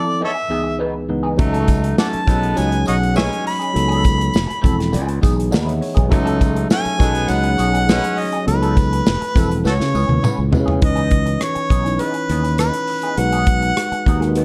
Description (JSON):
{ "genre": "lush 1970s-style soul", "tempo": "102 BPM", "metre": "4/4", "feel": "straight", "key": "C# minor", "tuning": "A4 = 437 Hz", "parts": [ { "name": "warm harmonica", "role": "melody", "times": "0.0-14.4 s", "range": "F#4 to B5", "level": "-24 LUFS", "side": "equal", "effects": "none" }, { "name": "tine electric piano", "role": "accompaniment", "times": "0.0-14.4 s", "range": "C#2 to F#5", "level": "-25 LUFS", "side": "equal", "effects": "none" }, { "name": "electric guitar through a small old amp", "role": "riff", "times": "0.0-14.4 s", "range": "E3 to B4", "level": "-31 LUFS", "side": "equal", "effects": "wah" }, { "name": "clear horn section", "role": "stabs", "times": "1.4-8.3 s", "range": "F#3 to D#4", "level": "-29 LUFS", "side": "equal", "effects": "none" }, { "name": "fingered electric bass", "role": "bass", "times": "1.4-14.4 s", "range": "E1 to C#3", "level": "-22 LUFS", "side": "equal", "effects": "none" }, { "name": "modern studio drum kit", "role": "drums", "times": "1.4-14.4 s", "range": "hi-hat, kick drum, rim click, snare drum, toms", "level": "-21 LUFS", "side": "equal", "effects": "none" }, { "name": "tambourine", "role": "percussion", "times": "1.7-10.7 s", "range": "none", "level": "-43 LUFS", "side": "equal", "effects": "none" } ], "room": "small room ambience", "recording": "dark, warm production", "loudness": "-18 LUFS", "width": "mono", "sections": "0.0-10.8 A section; 10.8-14.4 B section", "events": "drum fill 9.6-10.8", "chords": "0.2 Emaj7/C#; 1.4 D#m7b5/C#; 2.6 G#7sus4; 3.8 B7/C#; 4.3 Fmaj7; 4.9 Emaj7; 6.1 D#m7b5/C#; 7.3 G#7sus4; 8.5 B7/C#; 9.1 Fmaj7; 9.6 C#m7; 10.8 C#m9; 13.2 G#m7/B" }